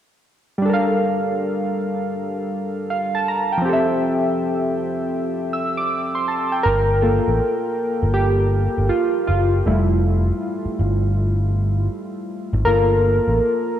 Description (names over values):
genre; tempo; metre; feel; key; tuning
lo-fi hip hop; 80 BPM; 4/4; swing 65% on 16ths; G dorian; A4 = 441 Hz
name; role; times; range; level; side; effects
warbly lo-fi synth keys; accompaniment; 0.6-13.8 s; F3 to E6; -19 LUFS; equal; chorus, cassette tape, low-pass filter
picked electric bass; bass; 6.7-13.4 s; F1 to A1; -19 LUFS; equal; none
room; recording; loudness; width
moderate lush hall reverb, RT60 2.0 s; dreamy mix soaked in reverb; -18 LUFS; side -10 dB against mid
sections
0.6-6.6 A section; 6.6-13.8 B section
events
synth keys solo 6.6-13.8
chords
0.6 Gm7; 3.6 Fmaj9; 6.6 Gm7; 9.6 Fmaj9; 12.6 Gm7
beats
| 0.65 1.40 2.15 2.90 | 3.65 4.40 5.15 5.90 | 6.65 7.40 8.15 8.90 | 9.65 10.40 11.15 11.90 | 12.65 13.40